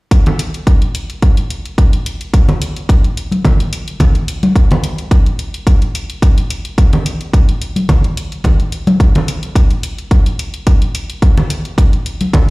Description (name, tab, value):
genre	nu-disco, nu disco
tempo	108 BPM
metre	4/4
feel	swing 53% on 16ths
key	none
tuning	none
part	electronic hi-hat	drums	0.1-12.5 s	none	-27 LUFS	left 2 dB	none
part	electronic kick drum	drums	0.1-12.5 s	none	-10 LUFS	equal	none
part	congas	percussion	0.3-12.5 s	none	-16 LUFS	equal	none
room	little or no reverb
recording	played on a big sound system in a bare room, large studio reverb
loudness	-11 LUFS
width	side -23 dB against mid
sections	0.1-12.5 A section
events	none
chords	none